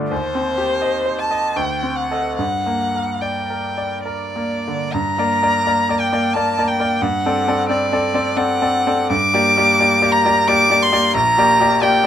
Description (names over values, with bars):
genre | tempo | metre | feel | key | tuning
classical, romantic duo for violin and grand piano | 62-93 BPM | 3/4 | rubato | G minor | A4 = 439 Hz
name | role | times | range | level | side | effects
bright grand piano | accompaniment | 0.0-12.1 s | Bb1 to Eb5 | -19 LUFS | equal | none
rich violin | melody | 0.1-12.1 s | C5 to D6 | -17 LUFS | equal | none
room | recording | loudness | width
light reverb | close, detailed microphones | -15 LUFS | side -10 dB against mid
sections
0.0-4.9 A section; 4.9-12.1 B section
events
none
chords
0.1 Cm/Eb; 1.6 D7b9; 2.4 Gm; 7.0 D7/G; 9.1 Gm; 11.1 Gm/Bb